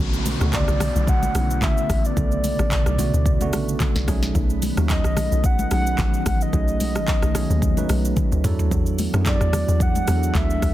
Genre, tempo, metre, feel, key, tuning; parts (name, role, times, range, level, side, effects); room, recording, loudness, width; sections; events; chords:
amapiano; 110 BPM; 4/4; swing 55% on 16ths; B dorian; A4 = 440 Hz
tine electric piano; accompaniment; 0.0-10.7 s; C#3 to B4; -27 LUFS; right 4 dB
glassy FM pad; sustained chords; 0.0-10.7 s; B2 to F#4; -31 LUFS; left 2 dB; ensemble chorus, built-in reverb
hollow log drum bass; bass; 0.0-10.7 s; A1 to F#2; -23 LUFS; equal
congas; percussion; 0.0-10.7 s; -31 LUFS; left 2 dB
downlifter; sound effects; 0.0-4.3 s; -34 LUFS; equal
afro-pop drum kit; drums; 0.1-10.7 s; handclaps, hi-hat, kick drum, rim click, shaker, snare drum, toms; -23 LUFS; equal
hollow clarinet-like synth lead; melody; 0.5-10.7 s; D5 to F#5; -28 LUFS; equal; chorus, digital delay
little or no reverb; dense, heavily limited modern master; -18 LUFS; side -14 dB against mid
0.0-10.7 A section
drop 0.0-10.7; drum fill 8.2-8.7
0.0 Bm9; 4.1 B13; 8.4 E9sus4